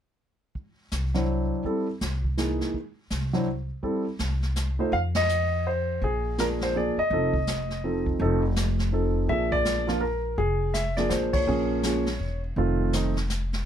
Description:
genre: jazz piano trio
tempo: 165 BPM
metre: 3/4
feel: swing 63% on 8ths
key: unclear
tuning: A4 = 441 Hz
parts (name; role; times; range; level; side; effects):
- jazz brush drum kit; drums; 0.6-13.7 s; brushed snare drum, hi-hat, kick drum, ride cymbal, snare drum; -32 LUFS; right 1 dB; none
- upright bass; bass; 0.9-13.6 s; E1 to F2; -28 LUFS; equal; none
- warm concert grand piano; melody; 1.1-13.1 s; Eb3 to F5; -25 LUFS; equal; none
room: little or no reverb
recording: none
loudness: -24 LUFS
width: side -9 dB against mid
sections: 0.6-4.9 A section; 4.9-13.7 B section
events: band accent 5.1, 11.3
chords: 0.6 Cadd9; 3.5 N.C.; 3.8 Am7; 4.9 F5; 6.0 Bb7; 7.1 F7; 9.3 Bb7; 11.5 Bbm7; 12.6 F7

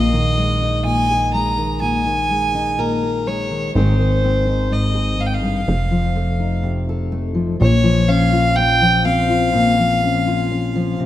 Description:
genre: acoustic folk duo or small band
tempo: 62 BPM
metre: 4/4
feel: straight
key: Bb minor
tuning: A4 = 438 Hz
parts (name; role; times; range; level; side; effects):
- warm fiddle; melody; 0.0-11.0 s; Bb4 to Bb5; -19 LUFS; equal; none
- fingerpicked steel-string acoustic guitar; accompaniment; 0.0-11.1 s; F2 to A4; -19 LUFS; left 2 dB; none
- plucky analog bass; bass; 0.0-11.1 s; F1 to Bb1; -21 LUFS; right 1 dB; none
room: moderate lush hall reverb, RT60 2.5 s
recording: rough home demo mix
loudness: -15 LUFS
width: side -13 dB against mid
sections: 0.0-7.6 A section; 7.6-11.1 B section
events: none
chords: 0.0 Ebsus4/Bb; 3.7 Ab; 5.7 F7; 7.6 Bbmadd9

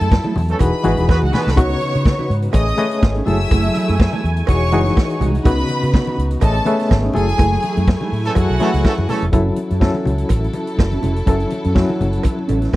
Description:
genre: disco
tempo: 124 BPM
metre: 4/4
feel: swing 56% on 16ths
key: F# dorian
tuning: A4 = 439 Hz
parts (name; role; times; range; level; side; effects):
- warm studio violin section; second line; 0.0-9.1 s; F#4 to E6; -24 LUFS; equal; none
- barky reed electric piano; accompaniment; 0.0-12.8 s; C#3 to E5; -21 LUFS; left 3 dB; fast tremolo
- mellow electric guitar; accompaniment; 0.0-12.8 s; G#3 to B4; -26 LUFS; right 5 dB; spring reverb
- dark studio string section; sustained chords; 0.0-12.8 s; C#3 to G#5; -26 LUFS; right 1 dB; none
- vintage muted fingered electric bass; bass; 0.0-12.7 s; E1 to C#3; -19 LUFS; equal; none
- vintage drum kit; drums; 0.0-12.8 s; hi-hat, kick drum, snare drum; -15 LUFS; equal; none
- congas; percussion; 0.1-12.8 s; none; -28 LUFS; left 3 dB; none
- cowbell; percussion; 0.1-12.8 s; none; -30 LUFS; right 10 dB; none
- warm horn section; stabs; 0.5-1.5, 8.3-9.2 s; E3 to B4; -22 LUFS; right 2 dB; none
room: little or no reverb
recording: dry, close 1970s-style studio recording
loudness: -14 LUFS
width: side -17 dB against mid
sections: 0.0-9.3 A section; 9.3-12.8 B section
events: band accent 0.0-1.6, 7.4-9.3; drum fill 1.1-1.6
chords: 0.0 F#m9; 0.6 Emaj9; 1.6 C#9sus4; 2.5 Amaj9#11; 3.3 F#m9; 4.5 Emaj9; 5.5 C#9sus4; 6.4 Amaj9#11; 7.1 F#m9; 9.3 F#m7

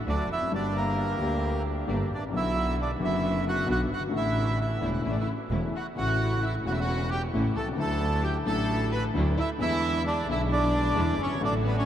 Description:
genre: tango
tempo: 132 BPM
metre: 4/4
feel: rubato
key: D major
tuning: A4 = 439 Hz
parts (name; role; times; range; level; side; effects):
- warm concert grand piano; accompaniment; 0.0-11.9 s; E1 to G4; -30 LUFS; left 3 dB; none
- muted studio string section; stabs; 0.0-11.9 s; F#3 to G4; -37 LUFS; right 3 dB; none
- clear double bass; bass; 0.0-11.9 s; E1 to E2; -30 LUFS; right 1 dB; none
- bandoneon; melody; 0.1-11.9 s; Bb3 to B5; -30 LUFS; right 2 dB; slapback echo
- rich studio violin section; second line; 5.0-11.9 s; B3 to B4; -34 LUFS; left 3 dB; none
room: moderate huge ambient reverb, RT60 8.8 s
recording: in a vast, echoing space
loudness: -25 LUFS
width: side -10 dB against mid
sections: 0.0-11.9 A section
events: none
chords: 0.0 D; 0.5 Gm; 2.3 Bm; 4.1 Asus4; 5.1 A; 7.8 Dadd9; 9.6 E7

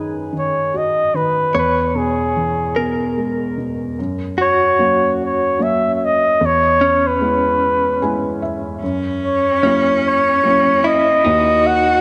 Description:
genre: acoustic folk-pop ballad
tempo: 74 BPM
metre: 3/4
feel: straight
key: unclear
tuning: A4 = 439 Hz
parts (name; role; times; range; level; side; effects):
- felt-muted upright piano; accompaniment; 0.0-12.0 s; D#2 to G#5; -24 LUFS; equal; none
- direct-recorded clean electric guitar; arpeggios; 0.0-12.0 s; C#4 to C#5; -26 LUFS; equal; tremolo
- warm flugelhorn; melody; 0.4-12.0 s; G#4 to F#5; -18 LUFS; equal; none
- clear cello; second line; 8.8-12.0 s; C#4 to F#4; -23 LUFS; equal; none
room: moderate plate reverb, RT60 2.5 s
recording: none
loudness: -17 LUFS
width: mono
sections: 0.0-4.0 A section; 4.0-12.0 B section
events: none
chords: 0.0 B/F#; 1.5 E; 4.0 F#; 6.4 E; 8.8 F#7; 11.2 D#m

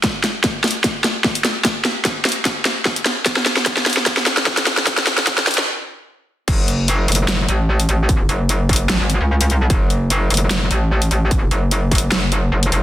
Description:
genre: heavy wobble dubstep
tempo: 149 BPM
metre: 4/4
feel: swing 54% on 16ths, half-time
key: F# minor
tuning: A4 = 438 Hz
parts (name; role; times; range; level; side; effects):
- dubstep drum kit; drums; 0.0-12.8 s; crash cymbal, hi-hat, snare drum; -17 LUFS; equal; none
- electronic kick drum; drums; 0.0-12.0 s; none; -21 LUFS; equal; distortion
- metallic wobble bass; bass; 6.5-12.8 s; F#1 to C#2; -16 LUFS; equal; chorus, overdrive
room: moderate digital room reverb, RT60 0.9 s, digital ambience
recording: dense, heavily limited modern master, high-pass filter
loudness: -15 LUFS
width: side -13 dB against mid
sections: 0.0-6.5 A section; 6.5-12.8 B section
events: build-up 0.0-6.5; drum fill 0.0-5.7; stop 5.7-6.5; drop 6.5-12.8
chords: none

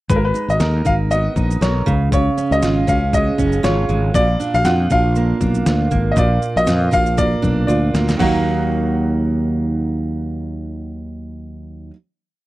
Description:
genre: acoustic pop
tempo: 118 BPM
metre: 4/4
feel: swing 55% on 16ths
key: Eb minor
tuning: A4 = 443 Hz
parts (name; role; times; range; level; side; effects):
- warm upright piano; melody; 0.1-11.9 s; Bb4 to Gb5; -21 LUFS; left 1 dB; none
- fingerpicked steel-string acoustic guitar; accompaniment; 0.1-12.0 s; Bb2 to Bb4; -21 LUFS; right 4 dB; none
- fretless electric bass; bass; 0.1-11.9 s; Gb1 to F2; -19 LUFS; left 1 dB; none
- trip hop sampler-style drum kit; drums; 0.1-8.3 s; crash cymbal, kick drum, shaker, snare drum; -22 LUFS; left 1 dB; overdrive
room: little or no reverb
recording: dry, close 1970s-style studio recording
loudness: -15 LUFS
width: side -17 dB against mid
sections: 0.1-8.2 pre-chorus; 8.2-12.3 final chord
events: drum fill 7.7-8.2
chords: 0.1 Abmadd9; 1.9 Db; 4.1 Bb; 8.2 Ebm

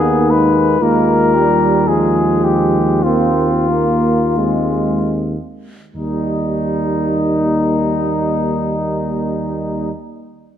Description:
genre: classical, hymn-like piece for brass band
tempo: 36-61 BPM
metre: 4/4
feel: rubato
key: Eb major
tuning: A4 = 439 Hz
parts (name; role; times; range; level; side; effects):
- mellow cornet; melody; 0.0-9.9 s; Eb4 to Cb5; -19 LUFS; left 6 dB; none
- mellow flugelhorn; second line; 0.0-9.9 s; G3 to Eb4; -21 LUFS; right 5 dB; none
- dark euphonium; accompaniment; 0.0-9.9 s; Bb3 to F4; -21 LUFS; left 2 dB; none
- warm trombone; accompaniment; 0.0-9.9 s; F3 to Bb3; -21 LUFS; right 3 dB; none
- mellow tuba; bass; 0.0-9.9 s; Eb2; -20 LUFS; right 1 dB; none
room: moderate scoring stage reverb, RT60 1.7 s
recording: none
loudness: -13 LUFS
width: side -9 dB against mid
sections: 0.0-5.9 A section; 5.9-10.6 B section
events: slowing down 0.0-5.9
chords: 0.0 Abm/Eb; 0.8 Bb5/Eb; 5.9 Eb

